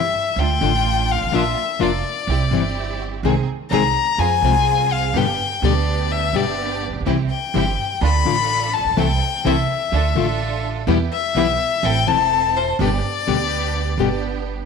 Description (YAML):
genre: tango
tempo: 126 BPM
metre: 4/4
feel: rubato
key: unclear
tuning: A4 = 442 Hz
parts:
  - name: clear violin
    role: second line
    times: 0.0-14.2 s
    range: C5 to B5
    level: -20 LUFS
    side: left 8 dB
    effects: slapback echo
  - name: clear studio string section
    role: stabs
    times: 0.0-14.7 s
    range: G3 to A4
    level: -27 LUFS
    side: right 12 dB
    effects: none
  - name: upright bass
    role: bass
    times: 0.0-14.7 s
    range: E1 to F2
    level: -22 LUFS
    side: right 4 dB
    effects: none
  - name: nylon-string guitar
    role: accompaniment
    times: 0.6-14.1 s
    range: B2 to Ab4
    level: -23 LUFS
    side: left 8 dB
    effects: none
room: moderate echo chamber reverb, RT60 2.0 s, small room reverb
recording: 1960s-style stereo with parts hard left and right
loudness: -17 LUFS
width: side -6 dB against mid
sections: 0.0-14.7 A section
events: violin solo 0.0-14.7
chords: 0.4 Dm; 1.3 Bb; 2.3 C; 3.3 Ab/C; 4.2 Fm; 5.2 G; 7.1 C; 8.0 Dm; 9.0 Am/C; 9.9 Dm; 10.9 Em; 11.8 Am; 12.8 G